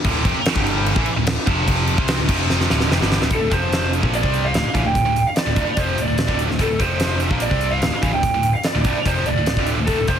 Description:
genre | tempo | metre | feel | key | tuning
hard rock | 146 BPM | 4/4 | straight | D minor | A4 = 444 Hz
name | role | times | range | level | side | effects
heavy high-gain guitar | riff | 0.0-10.2 s | D2 to C4 | -22 LUFS | right 1 dB | distortion
picked electric bass | bass | 0.0-10.2 s | D1 to C2 | -24 LUFS | equal | none
huge arena drum kit | drums | 0.0-10.2 s | crash cymbal, hi-hat, kick drum, snare drum | -21 LUFS | equal | none
lead guitar through a small cranked amp | melody | 3.3-10.2 s | A4 to G5 | -22 LUFS | right 2 dB | overdrive
room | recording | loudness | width
small room ambience | heavily compressed radio sound | -16 LUFS | side -8 dB against mid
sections
0.0-3.3 A section; 3.3-10.2 B section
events
drum fill 2.5-3.3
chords
0.0 Dm; 0.6 G5; 1.0 D5; 1.5 F5; 2.0 D5; 2.3 F5; 2.7 Dm; 3.3 D5; 3.5 F5; 4.0 Dm; 6.8 F5; 7.3 Dm

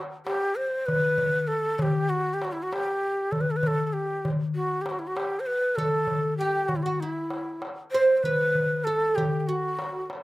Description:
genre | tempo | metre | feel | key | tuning
Arabic maqam ensemble | 98 BPM | 4/4 | straight | unclear | A4 = 440 Hz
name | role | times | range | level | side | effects
breathy ney | melody | 0.3-10.1 s | E4 to C5 | -26 LUFS | equal | slapback echo
darbuka | percussion | 0.3-10.2 s | none | -30 LUFS | left 2 dB | none
oud | second line | 5.8-10.1 s | E4 to C5 | -28 LUFS | right 3 dB | none
room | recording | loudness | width
light reverb | recorded outdoors, with no room sound | -24 LUFS | side -18 dB against mid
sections
0.0-10.2 A section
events
none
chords
none

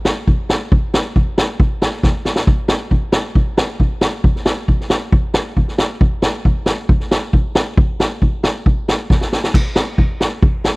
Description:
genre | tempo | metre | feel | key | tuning
klezmer | 136 BPM | 2/4 | straight | none | none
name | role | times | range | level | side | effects
street-band drum kit | drums | 0.0-10.7 s | crash cymbal, kick drum, snare drum | -14 LUFS | equal | none
room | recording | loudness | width
little or no reverb | dry, close 1970s-style studio recording | -14 LUFS | side -28 dB against mid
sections
0.0-2.5 A section; 2.5-9.5 B section; 9.5-10.8 B section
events
drum fill 2.0-2.5, 9.1-9.5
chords
none

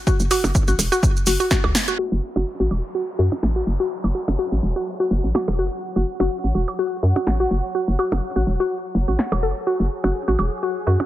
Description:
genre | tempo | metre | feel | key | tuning
minimal techno | 125 BPM | 4/4 | swing 55% on 16ths | F# minor | A4 = 440 Hz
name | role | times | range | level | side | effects
mallet-like synth pluck | riff | 0.1-10.9 s | F#4 to A4 | -24 LUFS | left 1 dB | chorus, sidechain pumping, digital delay
electronic kick drum | drums | 0.1-1.6 s | none | -20 LUFS | equal | none
maracas | percussion | 0.1-2.0 s | none | -28 LUFS | right 3 dB | none
hollow knocking FM bass | bass | 0.2-11.0 s | E1 to F#2 | -20 LUFS | equal | sidechain pumping
house drum kit | drums | 0.3-9.3 s | hi-hat, snare drum | -24 LUFS | equal | low-pass filter on hats, low-pass filter on snare
percussion blips | percussion | 0.3-11.1 s | none | -28 LUFS | right 3 dB | digital delay
downlifter | sound effects | 2.1-5.8 s | none | -39 LUFS | equal | none
bubbling stepped-filter texture | texture | 2.0-11.1 s | F#3 to G#4 | -32 LUFS | right 1 dB | chorus, built-in reverb, sidechain pumping
room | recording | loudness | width
light reverb | low-pass filter | -19 LUFS | side -14 dB against mid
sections
0.0-2.0 A section; 2.0-11.1 B section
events
drop 0.0-2.0; drum fill 1.7; band accent 1.7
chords
none

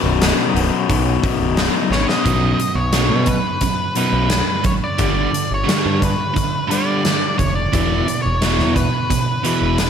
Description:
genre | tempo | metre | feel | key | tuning
quiet-loud alternative rock | 88 BPM | 4/4 | straight | unclear | A4 = 440 Hz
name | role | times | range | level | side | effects
twangy electric guitar | arpeggios | 0.0-9.9 s | B1 to D#4 | -25 LUFS | left 4 dB | tremolo
cranked stack guitar | riff | 0.0-2.2 s | B1 to B2 | -20 LUFS | left 9 dB | overdrive, slapback echo
growling picked electric bass | bass | 0.0-9.9 s | B0 to B2 | -20 LUFS | equal | overdrive
big rock drum kit | drums | 0.2-9.9 s | hi-hat, kick drum, snare drum | -20 LUFS | equal | none
octave-fuzz lead guitar | melody | 1.9-9.9 s | B4 to D#5 | -22 LUFS | left 1 dB | distortion, slapback echo
biting overdriven guitar | riff | 2.2-9.9 s | B1 to G3 | -22 LUFS | right 8 dB | slapback echo
room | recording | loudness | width
moderate concert hall reverb, RT60 2.4 s | big arena sound | -15 LUFS | side -8 dB against mid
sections
0.0-2.3 A section; 2.3-9.9 B section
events
drum fill 1.9-2.3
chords
0.0 B; 2.3 B5; 5.0 G; 7.7 E5

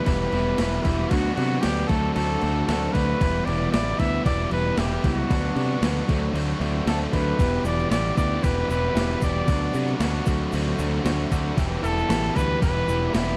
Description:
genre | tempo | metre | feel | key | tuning
indie rock | 115 BPM | 4/4 | straight | E minor | A4 = 440 Hz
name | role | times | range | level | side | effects
clear trumpet | melody | 0.0-13.4 s | E4 to E5 | -30 LUFS | equal | tape echo
mellow tonewheel organ | sustained chords | 0.0-13.4 s | B4 to D6 | -42 LUFS | equal | none
crunchy overdriven guitar | riff | 0.0-13.4 s | E2 to G4 | -32 LUFS | equal | subtle chorus, tape echo
sludgy distorted guitar | riff | 0.0-13.4 s | E3 to G4 | -31 LUFS | equal | overdrive
growling picked electric bass | bass | 0.1-13.3 s | E1 to C3 | -29 LUFS | equal | overdrive
gated 80s digital drum machine | drums | 0.1-13.3 s | crash cymbal, kick drum, snare drum | -30 LUFS | equal | gated reverb, gated reverb snare, overdrive
tube shaker | percussion | 7.4-13.3 s | none | -50 LUFS | equal | none
room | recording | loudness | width
little or no reverb | dry, close 1970s-style studio recording | -23 LUFS | mono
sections
0.0-13.4 A section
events
none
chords
0.0 Em7; 1.1 Bm7/D; 1.9 D7; 3.2 Em7; 5.3 Bm7/D; 6.1 D7; 7.4 Em7; 9.5 Bm7/D; 10.3 D7; 11.6 Em7

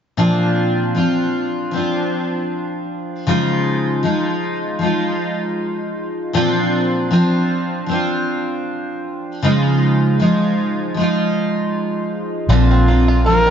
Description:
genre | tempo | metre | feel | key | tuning
pop | 78 BPM | 4/4 | swing 55% on 16ths | Bb mixolydian | A4 = 440 Hz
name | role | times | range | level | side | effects
picked steel-string acoustic guitar | accompaniment | 0.2-13.5 s | Bb2 to F4 | -16 LUFS | equal | double-tracked left and right
bluegrass banjo | arpeggios | 12.5-13.5 s | D3 to F4 | -24 LUFS | right 4 dB | ping-pong delay
vintage muted fingered electric bass | bass | 12.5-13.5 s | Bb1 | -14 LUFS | equal | none
clear trumpet | melody | 13.3-13.5 s | Bb4 | -12 LUFS | right 1 dB | none
room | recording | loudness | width
moderate plate reverb, RT60 3.3 s | dark, warm production, nothing above 7.6 kHz | -16 LUFS | side -8 dB against mid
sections
0.2-12.5 A section; 12.5-13.5 B section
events
none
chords
0.2 Bbadd9; 3.3 Dbadd9; 6.3 Bbadd9; 9.4 Dbadd9; 12.5 Bbadd9

